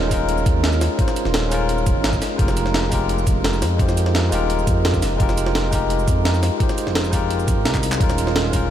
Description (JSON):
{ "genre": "liquid drum and bass", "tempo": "171 BPM", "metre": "4/4", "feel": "straight", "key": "F minor", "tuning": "A4 = 440 Hz", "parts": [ { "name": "barky tine electric piano", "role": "accompaniment", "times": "0.0-8.7 s", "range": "Ab3 to C5", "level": "-22 LUFS", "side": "equal", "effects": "overdrive, auto-pan, diffuse ambient delay" }, { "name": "smooth gliding synth bass", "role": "bass", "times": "0.0-8.7 s", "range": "Eb1 to F2", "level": "-21 LUFS", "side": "equal", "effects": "none" }, { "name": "breakbeat sampler-style drum kit", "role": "drums", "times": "0.1-8.6 s", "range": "handclaps, hi-hat, shaker, snare drum", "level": "-24 LUFS", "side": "right 1 dB", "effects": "none" }, { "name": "electronic kick drum", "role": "drums", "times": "0.1-8.6 s", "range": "none", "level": "-21 LUFS", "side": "equal", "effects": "none" } ], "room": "light reverb, digital ambience", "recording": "none", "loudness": "-17 LUFS", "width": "side -10 dB against mid", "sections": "0.0-8.7 A section", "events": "drum fill 7.7", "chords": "0.0 Eb9sus4; 2.4 Fm11; 8.0 Eb9sus4" }